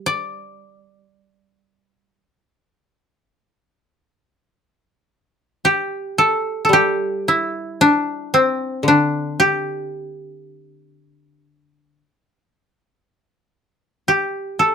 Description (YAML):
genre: japanese traditional, Japanese chamber music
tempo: 55 BPM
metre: 4/4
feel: uneven beats, rubato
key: D suspended pentatonic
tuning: A4 = 440 Hz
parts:
  - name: koto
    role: melody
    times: 0.0-14.7 s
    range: C4 to D5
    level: -17 LUFS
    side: equal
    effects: none
  - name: koto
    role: accompaniment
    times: 0.0-12.0 s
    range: D3 to G3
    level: -24 LUFS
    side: left 1 dB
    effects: none
room: light reverb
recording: none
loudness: -16 LUFS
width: side -7 dB against mid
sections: 0.0-4.5 A section; 4.5-14.7 B section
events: none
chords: none